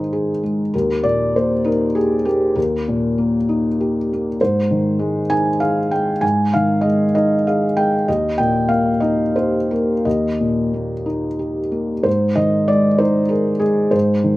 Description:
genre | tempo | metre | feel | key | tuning
neoclassical minimalist piano | 65 BPM (dotted quarters) | 6/8 | rubato | unclear | A4 = 439 Hz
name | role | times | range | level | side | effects
felt-muted upright piano | solo | 0.0-14.4 s | Eb2 to Ab5 | -16 LUFS | equal | none
room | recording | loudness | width
little or no reverb | recorded outdoors, with no room sound | -16 LUFS | side -18 dB against mid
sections
0.0-12.1 A section; 12.1-14.4 A section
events
none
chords
0.0 Ab; 0.7 Eb; 4.4 Ab; 8.1 Eb; 12.1 Ab

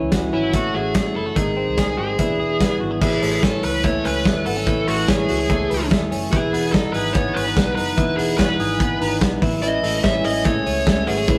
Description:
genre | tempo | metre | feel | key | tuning
jangly indie pop | 145 BPM | 4/4 | straight | unclear | A4 = 436 Hz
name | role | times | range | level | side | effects
fingerpicked plugged-in steel-string acoustic guitar | accompaniment | 0.0-3.0, 9.6-11.4 s | G#2 to G#4 | -32 LUFS | equal | none
twelve-string electric guitar | arpeggios | 0.0-11.4 s | D#3 to G#4 | -25 LUFS | equal | none
vintage muted fingered electric bass | bass | 0.0-11.4 s | E1 to D#2 | -32 LUFS | equal | none
loose indie drum kit | drums | 0.1-11.4 s | crash cymbal, hi-hat, kick drum, snare drum | -24 LUFS | equal | none
dark smooth lead guitar | melody | 0.3-11.4 s | E4 to E5 | -25 LUFS | equal | overdrive
room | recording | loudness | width
moderate stone room reverb, RT60 1.0 s | rough rehearsal-room recording | -20 LUFS | mono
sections
0.0-3.0 A section; 3.0-11.4 B section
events
none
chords
0.0 A6; 1.4 G#; 2.2 E7; 3.0 Amaj7; 6.3 Emaj7; 9.4 Amaj7

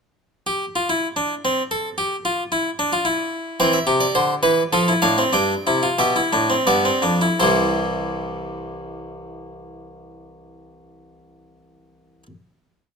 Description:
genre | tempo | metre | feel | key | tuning
classical, baroque-style 3-part fugue for harpsichord | 78-112 BPM | 3/4 | straight | C major | A4 = 440 Hz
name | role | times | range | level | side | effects
harpsichord | solo | 0.5-12.3 s | C2 to G5 | -18 LUFS | equal | none
room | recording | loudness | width
moderate recital hall reverb, RT60 1.5 s | close, detailed microphones | -18 LUFS | side -5 dB against mid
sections
0.3-7.4 exposition; 7.4-12.0 final chord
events
slowing down 2.8-7.4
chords
0.3 N.C.; 3.6 C; 4.7 Dm/F; 5.3 C/G; 6.7 G7; 7.4 C

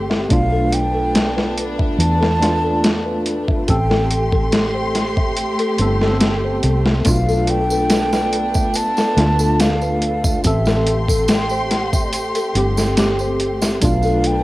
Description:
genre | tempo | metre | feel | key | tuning
trip hop | 71 BPM | 4/4 | straight | A minor | A4 = 440 Hz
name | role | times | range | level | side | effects
tine electric piano | accompaniment | 0.0-14.4 s | A3 to A4 | -24 LUFS | equal | tremolo, cassette tape
warm symphonic string section | sustained chords | 0.0-14.4 s | A3 to C6 | -24 LUFS | equal | cassette tape
music box | arpeggios | 0.0-14.4 s | A4 to E5 | -25 LUFS | left 2 dB | vintage 12-bit sampler grit, cassette tape, tape echo
fingered electric bass | bass | 0.0-14.4 s | G1 to E2 | -20 LUFS | equal | none
dusty soul sampler-style drum kit | drums | 0.1-14.4 s | hi-hat, kick drum, snare drum | -19 LUFS | equal | overdrive, cassette tape
mellow hollow concert flute | melody | 0.3-14.4 s | E5 to A5 | -23 LUFS | right 1 dB | cassette tape, tape echo
tambourine | percussion | 7.1-14.2 s | none | -30 LUFS | right 2 dB | none
room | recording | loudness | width
light reverb, small room ambience | home recording on cassette | -15 LUFS | side -18 dB against mid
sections
0.0-14.4 A section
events
none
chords
0.3 Bm7b5; 3.7 Am7; 7.1 Bm7b5; 10.4 Am7; 13.8 Bm7b5

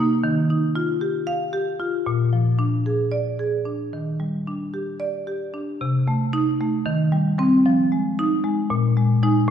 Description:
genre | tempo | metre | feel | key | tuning
classical, contemporary piece for solo marimba | 228 BPM (eighths) | 7/8 | straight | Eb major, C minor from 5.8 s | A4 = 440 Hz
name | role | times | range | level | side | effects
marimba with medium hard mallets | solo | 0.0-9.5 s | Bb2 to F5 | -19 LUFS | equal | none
room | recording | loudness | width
wet recital hall reverb, RT60 1.6 s | heard from further back in the room | -20 LUFS | side -9 dB against mid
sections
0.0-5.8 A section; 5.8-9.5 B section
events
none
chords
0.2 Ebadd9; 2.1 Bb7; 3.9 Ebmaj7; 5.8 Cm6; 6.9 Eb6; 7.7 Fm7; 8.7 Bb7sus4

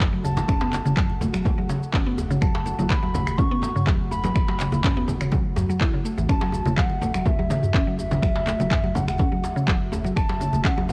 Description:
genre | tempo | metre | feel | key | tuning
afro house | 124 BPM | 4/4 | straight | F# minor | A4 = 440 Hz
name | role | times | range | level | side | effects
dark analog pad | sustained chords | 0.0-10.9 s | A3 to F#5 | -39 LUFS | equal | chorus, sidechain pumping
warm sub bass | bass | 0.0-10.9 s | E1 to A1 | -34 LUFS | equal | sidechain pumping
afro-pop drum kit | drums | 0.0-10.9 s | finger snaps, handclaps, shaker, toms | -32 LUFS | equal | cassette tape
electronic kick drum | drums | 0.0-10.7 s | none | -26 LUFS | equal | overdrive, cassette tape
congas | percussion | 0.0-10.9 s | none | -31 LUFS | equal | none
mallet-like synth pluck | arpeggios | 0.1-10.9 s | C#3 to E4 | -29 LUFS | equal | chorus, sidechain pumping, tape echo
bansuri | melody | 0.2-10.9 s | E5 to C#6 | -33 LUFS | equal | tape echo
djembe | percussion | 0.2-10.9 s | none | -36 LUFS | equal | none
room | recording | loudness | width
little or no reverb | home recording on cassette, lossy compression artefacts | -23 LUFS | mono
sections
0.0-10.9 A section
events
none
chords
0.0 F#m7

